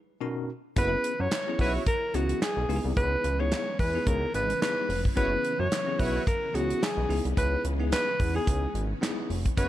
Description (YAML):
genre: early-eighties boogie funk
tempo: 109 BPM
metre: 4/4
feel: swing 56% on 16ths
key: C# minor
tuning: A4 = 439 Hz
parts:
  - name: bell-like tine electric piano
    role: accompaniment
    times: 0.2-9.7 s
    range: B2 to A#4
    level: -34 LUFS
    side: left 3 dB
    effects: fast stereo tremolo
  - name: warm alto saxophone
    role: melody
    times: 0.8-9.7 s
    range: F#4 to C#5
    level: -29 LUFS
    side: equal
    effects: tape echo
  - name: analog synth brass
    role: second line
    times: 0.8-1.8, 5.2-6.2, 9.6-9.7 s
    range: E4 to C#5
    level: -36 LUFS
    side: right 2 dB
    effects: chorus, tape echo
  - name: phased string machine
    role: sustained chords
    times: 0.8-9.7 s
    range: C#3 to E4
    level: -39 LUFS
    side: left 1 dB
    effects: ensemble chorus, phaser
  - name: chorused synth bass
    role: bass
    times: 0.8-9.7 s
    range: E#1 to F#2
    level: -30 LUFS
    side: equal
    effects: none
  - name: damped 70s drum kit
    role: drums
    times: 0.8-9.7 s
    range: handclaps, hi-hat, kick drum, snare drum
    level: -30 LUFS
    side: equal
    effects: gated reverb
room: studio ambience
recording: none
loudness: -25 LUFS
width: side -13 dB against mid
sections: 0.8-9.7 A section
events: break 0.0-0.8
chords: 0.0 Bmaj9; 0.8 F#7sus4; 2.7 C#m7; 5.2 F#7sus4; 7.1 C#m7